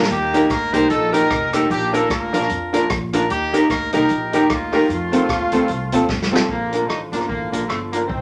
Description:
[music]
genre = ska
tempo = 150 BPM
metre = 4/4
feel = swing 58% on 8ths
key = Bb major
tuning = A4 = 439 Hz
[part]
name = clear horn section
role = melody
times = 0.0-8.2 s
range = D3 to C5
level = -24 LUFS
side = equal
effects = none
[part]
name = archtop guitar, miked and amplified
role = accompaniment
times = 0.0-8.0 s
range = A3 to Bb4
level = -24 LUFS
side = equal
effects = tape echo
[part]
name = clear upright piano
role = stabs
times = 0.0-6.5 s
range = C4 to Bb4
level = -23 LUFS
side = equal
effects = none
[part]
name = upright bass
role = bass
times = 0.0-8.2 s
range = F1 to F2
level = -31 LUFS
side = equal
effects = none
[part]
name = vintage drum kit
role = drums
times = 0.0-8.2 s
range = hi-hat, kick drum, rim click, snare drum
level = -28 LUFS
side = equal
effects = none
[sound]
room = wet studio reverb, RT60 0.6 s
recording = none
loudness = -19 LUFS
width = mono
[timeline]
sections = 0.0-6.5 A section; 6.5-8.2 B section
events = drum fill 6.1-6.5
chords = 0.1 Eb; 1.7 Bb; 3.3 Eb; 4.9 F; 6.5 Bb

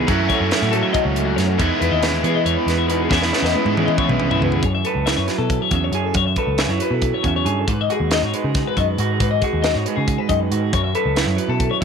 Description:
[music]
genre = math rock and midwest emo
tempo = 276 BPM (eighths)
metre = 7/8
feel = straight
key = unclear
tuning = A4 = 444 Hz
[part]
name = electric guitar through a small old amp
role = accompaniment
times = 0.0-11.8 s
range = E2 to B4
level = -23 LUFS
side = right 14 dB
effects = none
[part]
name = twelve-string electric guitar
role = arpeggios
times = 0.0-11.8 s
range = E4 to F#5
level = -23 LUFS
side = left 14 dB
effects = none
[part]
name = overdriven electric guitar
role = riff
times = 0.0-4.6 s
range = E3 to F#4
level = -22 LUFS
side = equal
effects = none
[part]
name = vintage muted picked electric bass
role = bass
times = 0.0-11.8 s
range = B1 to E3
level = -22 LUFS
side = equal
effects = none
[part]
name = crisp fusion drum kit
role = drums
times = 0.1-11.8 s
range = hi-hat, kick drum, snare drum, toms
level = -23 LUFS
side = equal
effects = none
[sound]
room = light reverb, small room ambience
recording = 1960s-style stereo with parts hard left and right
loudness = -16 LUFS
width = side -6 dB against mid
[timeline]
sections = 0.0-4.6 A section; 4.6-11.8 B section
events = drum fill 3.1-4.6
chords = 0.1 F#m7; 1.6 Emaj7; 3.1 E6; 4.6 F#m7; 7.7 G#m7; 10.7 F#m7

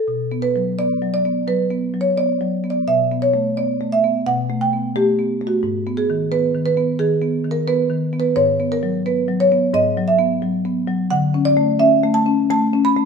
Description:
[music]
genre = classical, contemporary piece for solo marimba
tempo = 87 BPM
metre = 4/4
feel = rubato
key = B minor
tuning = A4 = 440 Hz
[part]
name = marimba with soft mallets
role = solo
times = 0.0-13.1 s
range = G#2 to B5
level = -16 LUFS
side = equal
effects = none
[sound]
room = wet stone room reverb, RT60 1.1 s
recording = heard from further back in the room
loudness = -16 LUFS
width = side -5 dB against mid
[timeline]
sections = 0.1-13.1 A section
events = none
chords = 0.1 B5; 2.9 Asus2/B; 5.6 G#m; 8.4 F#sus24/G#; 11.1 D5

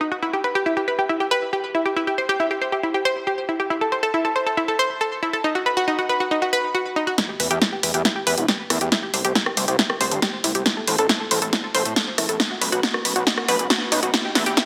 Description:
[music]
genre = uplifting trance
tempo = 138 BPM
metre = 4/4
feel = straight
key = E minor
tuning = A4 = 441 Hz
[part]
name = analog pluck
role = arpeggios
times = 0.0-14.6 s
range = D#4 to C5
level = -24 LUFS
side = equal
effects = chorus, sidechain pumping, tape echo
[part]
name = electronic kick drum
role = drums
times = 7.2-14.7 s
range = none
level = -33 LUFS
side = equal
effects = high-pass filter on kick, high-pass filter on room
[part]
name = techno drum kit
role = drums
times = 7.2-14.7 s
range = hi-hat, rim click, snare drum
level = -23 LUFS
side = equal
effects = high-pass filter on snare, low-pass filter on snare, high-pass filter on hats, low-pass filter on hats, high-pass filter on room, low-pass filter on room
[part]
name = gritty driven synth bass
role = bass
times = 7.4-14.5 s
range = E1 to A2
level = -27 LUFS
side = equal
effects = sidechain pumping, high-pass filter
[sound]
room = wet recital hall reverb, RT60 1.7 s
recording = dense, heavily limited modern master, high-pass filter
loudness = -21 LUFS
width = mono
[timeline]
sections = 0.0-7.2 A section; 7.2-14.7 B section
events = build-up 7.2-14.7; drum fill 7.2-14.7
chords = 0.2 Em; 2.0 C; 3.7 Am; 5.4 B; 7.2 Em; 8.9 C; 10.7 Am; 12.4 B; 14.1 Em

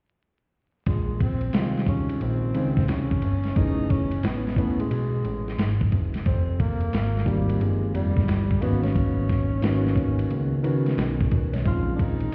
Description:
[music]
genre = hip hop, jazz-hop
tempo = 89 BPM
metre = 4/4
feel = swing 66% on 16ths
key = unclear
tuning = A4 = 440 Hz
[part]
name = breathy tenor saxophone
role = melody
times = 0.9-12.3 s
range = G3 to F4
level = -33 LUFS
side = equal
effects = tape echo
[part]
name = fat analog bass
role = bass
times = 0.9-12.3 s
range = F1 to Db2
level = -28 LUFS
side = equal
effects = none
[part]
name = dusty soul sampler-style drum kit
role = drums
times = 0.9-12.3 s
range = hi-hat, kick drum, ride cymbal, snare drum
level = -27 LUFS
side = equal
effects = none
[part]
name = dark baby grand piano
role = accompaniment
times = 1.5-12.3 s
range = Db3 to Db5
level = -30 LUFS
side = equal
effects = none
[sound]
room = light reverb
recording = heard muffled through a wall, stone room reverb, vinyl crackle, EQ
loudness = -24 LUFS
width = mono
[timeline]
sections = 0.9-12.3 A section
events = none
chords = 0.9 Bbm11; 3.6 Gbm11; 6.3 Fm11; 8.6 Abm11; 11.7 Bbm11

